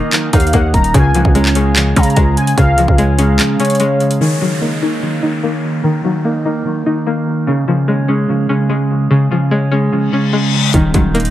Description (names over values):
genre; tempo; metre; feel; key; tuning
hip hop, trap; 147 BPM; 4/4; half-time; Eb minor; A4 = 439 Hz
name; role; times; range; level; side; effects
string-like resonator pluck; accompaniment; 0.0-11.3 s; Db3 to Eb4; -18 LUFS; left 2 dB; chorus, low-pass filter, tape echo
mellow electric guitar; arpeggios; 0.0-11.3 s; Db3 to Eb4; -15 LUFS; right 1 dB; low-pass filter, tape echo
trap drum kit; drums; 0.1-4.2, 10.7-11.3 s; handclaps, hi-hat, kick drum; -15 LUFS; equal; none
warm velvety synth lead; second line; 0.3-4.2 s; Db5 to Bb5; -20 LUFS; left 1 dB; chorus, tape echo
growling 808-style bass; bass; 0.3-3.4, 10.7-11.3 s; Eb1 to Db3; -15 LUFS; equal; none
downlifter, reverse cymbal and impact; sound effects; 4.2-11.3 s; none; -23 LUFS; left 3 dB; none
room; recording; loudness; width
light reverb; echo-heavy mix; -11 LUFS; side -13 dB against mid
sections
0.0-4.2 A section; 4.2-10.7 B section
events
break 3.4-4.2; filter sweep 4.2-10.7; reverse cymbal 10.1-10.7; impact 10.7-11.3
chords
0.0 Ebm; 0.9 Db; 4.2 Ebm; 7.5 Db; 10.7 Ebm